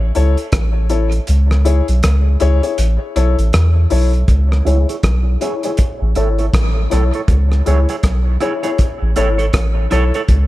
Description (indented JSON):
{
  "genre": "dub reggae",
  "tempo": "80 BPM",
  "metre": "4/4",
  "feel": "swing 60% on 16ths",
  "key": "unclear",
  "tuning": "A4 = 441 Hz",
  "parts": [
    { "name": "soft dub sub bass", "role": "bass", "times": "0.0-10.5 s", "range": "G#1 to E2", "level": "-13 LUFS", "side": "equal", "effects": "none" },
    { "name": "dark grand piano", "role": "stabs", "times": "0.1-10.1 s", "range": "E4 to C#5", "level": "-22 LUFS", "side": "left 6 dB", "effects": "low-pass filter, dub echo" },
    { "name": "cloth-damped thuddy drum kit", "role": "drums", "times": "0.1-10.5 s", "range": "hi-hat, kick drum, rim click", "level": "-18 LUFS", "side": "equal", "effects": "none" },
    { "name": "electric guitar at the edge of break-up", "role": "accompaniment", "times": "4.7-10.2 s", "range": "E4 to C#5", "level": "-23 LUFS", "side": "right 5 dB", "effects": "spring reverb, low-pass filter, dub echo" }
  ],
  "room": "studio reverb",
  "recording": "echo-heavy mix",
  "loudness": "-13 LUFS",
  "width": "side -17 dB against mid",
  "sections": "0.0-4.3 A section; 4.3-10.5 B section",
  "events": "break 0.0-4.3; kick muted 1.3-4.3; filter sweep 4.3-10.5",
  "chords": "0.0 A; 1.3 C#m; 2.8 A; 4.3 C#m; 5.8 A; 7.3 C#m; 8.8 A",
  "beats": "0.53 | 1.28 2.03 2.78 3.53 | 4.28 5.03 5.78 6.53 | 7.28 8.03 8.78 9.53 | 10.29"
}